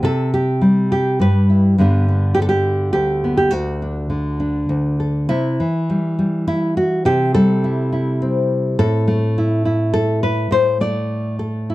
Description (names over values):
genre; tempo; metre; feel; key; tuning
folk, solo fingerstyle acoustic guitar; 103 BPM; 3/4; rubato; unclear; A4 = 439 Hz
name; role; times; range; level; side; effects
nylon-string guitar; solo; 0.0-11.7 s; D2 to D5; -15 LUFS; equal; none
room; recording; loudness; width
little or no reverb; dry, close 1970s-style studio recording; -15 LUFS; side -17 dB against mid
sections
0.0-5.3 A section; 5.3-11.7 B section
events
none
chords
0.0 C; 1.8 G; 3.5 D; 5.3 C; 8.8 Am